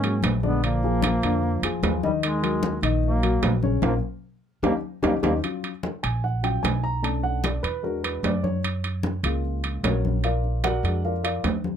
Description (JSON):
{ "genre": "Afro-Cuban jazz", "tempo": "150 BPM", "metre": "4/4", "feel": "straight", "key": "unclear", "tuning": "A4 = 440 Hz", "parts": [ { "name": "warm duduk", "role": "melody", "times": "0.0-5.3 s", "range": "G3 to C#4", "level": "-28 LUFS", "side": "equal", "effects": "none" }, { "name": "mellow trombone", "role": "second line", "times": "0.0-5.3 s", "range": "D#3 to A#3", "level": "-32 LUFS", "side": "right 5 dB", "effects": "none" }, { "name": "dark baby grand piano", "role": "accompaniment", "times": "0.0-11.4 s", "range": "C#3 to Bb5", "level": "-27 LUFS", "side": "left 3 dB", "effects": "none" }, { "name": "upright bass", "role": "bass", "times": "0.0-11.8 s", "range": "A#1 to G#2", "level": "-26 LUFS", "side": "right 1 dB", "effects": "none" }, { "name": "congas", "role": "percussion", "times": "0.0-11.8 s", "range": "none", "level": "-30 LUFS", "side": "left 5 dB", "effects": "none" }, { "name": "timbales", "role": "percussion", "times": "0.0-11.6 s", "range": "none", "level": "-29 LUFS", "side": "right 7 dB", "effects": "none" } ], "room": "light reverb", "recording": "close, detailed microphones", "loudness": "-22 LUFS", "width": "side -8 dB against mid", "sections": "0.0-5.4 A section; 5.4-11.8 B section", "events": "band accent 3.8-5.4; drum fill 4.8-5.4; grand piano solo 5.4-11.8", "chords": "0.0 G#m9; 0.6 A#7; 2.2 D#m7; 3.8 A#m; 4.6 D#7; 5.4 Bbm7; 7.0 Bm7; 7.8 E9; 8.6 Gbmaj7; 10.2 Bb7b13" }